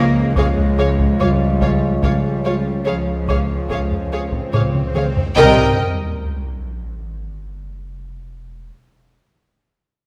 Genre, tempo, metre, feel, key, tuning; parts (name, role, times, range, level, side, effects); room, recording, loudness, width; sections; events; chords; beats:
cinematic, suspense film score; 72 BPM; 4/4; straight; A4 = 440 Hz
warm chamber violin section; melody; 0.0-5.8 s; F5 to G5; -29 LUFS; equal
warm studio violin section; second line; 0.0-5.8 s; Db5 to Eb5; -26 LUFS; equal
warm chamber viola section; accompaniment; 0.0-5.8 s; F4 to Bb4; -23 LUFS; equal
mellow trombone section; sustained chords; 0.0-5.8 s; Eb3 to Ab3; -28 LUFS; equal
warm French horn section; sustained chords; 0.0-5.8 s; C4 to Db5; -29 LUFS; equal
folk marimba with hard mallets; riff; 0.0-5.2 s; Db3 to Db4; -27 LUFS; equal
dark chamber double bass section; bass; 0.0-5.8 s; C2 to Db2; -26 LUFS; equal
warm chamber cello section; bass; 0.0-5.8 s; C3 to Bb3; -25 LUFS; equal
bowed-like drone; drone; 0.2-5.8 s; Db2; -32 LUFS; equal; built-in reverb
taiko ensemble; drums; 0.4-7.0 s; -25 LUFS; equal
swell and sub drop; sound effects; 4.0-8.7 s; -29 LUFS; equal
moderate scoring stage reverb, RT60 1.6 s; -18 LUFS; mono
0.0-5.4 A section; 5.4-8.7 B section
swell 4.0-5.4; drum fill 4.5-5.4; impact 5.4-8.7
0.0 Db; 5.4 C7(no3)
0.37 1.20 | 2.04 2.87 3.70 4.54 | 5.37 6.20 7.04 7.87